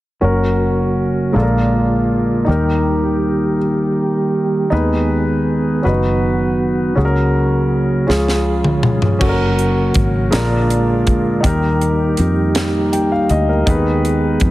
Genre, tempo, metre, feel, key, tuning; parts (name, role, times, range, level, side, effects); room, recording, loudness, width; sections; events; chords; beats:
slow gospel; 54 BPM (dotted quarters); 6/8; straight; F# major; A4 = 440 Hz
warm concert grand piano; accompaniment; 0.2-14.5 s; A#2 to G5; -18 LUFS; left 1 dB
percussive tonewheel organ; sustained chords; 0.2-14.5 s; C#3 to G#4; -18 LUFS; right 2 dB; slow rotary speaker, chorus vibrato
fingered electric bass; bass; 0.2-14.5 s; F#1 to E#2; -19 LUFS; equal
crisp fusion drum kit; drums; 8.1-14.5 s; crash cymbal, hi-hat, kick drum, snare drum, toms; -19 LUFS; equal
light reverb, studio reverb; heavily compressed radio sound, multiband compression; -14 LUFS; side -16 dB against mid
0.2-9.2 A section; 9.2-14.5 B section
drum fill 8.1-9.2
0.2 F#; 1.3 A#7; 2.5 D#; 4.7 G#m/D#; 5.8 B/F#; 7.0 F#/C#; 8.1 C#; 9.2 F#; 10.3 A#7; 11.4 D#; 13.7 G#m/D#
| 0.23 1.35 | 2.47 3.60 | 4.72 5.84 | 6.96 8.08 | 9.20 10.32 | 11.44 12.55 | 13.67